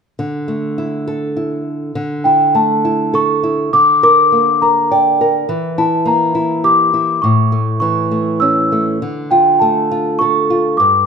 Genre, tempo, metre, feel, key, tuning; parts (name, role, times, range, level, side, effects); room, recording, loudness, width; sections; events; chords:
children's music, lullaby; 102 BPM; 3/4; rubato; D harmonic minor; A4 = 440 Hz
nylon-string guitar; accompaniment; 0.2-11.1 s; G2 to D5; -17 LUFS; equal
large celesta; melody; 2.2-11.1 s; G5 to E6; -12 LUFS; left 1 dB
moderate recital hall reverb, RT60 1.5 s; -12 LUFS; side -6 dB against mid
0.2-1.9 A section; 1.9-11.1 B section
0.2 Dsus2; 3.7 Gm/D; 5.5 Edim; 7.2 A; 9.0 Dm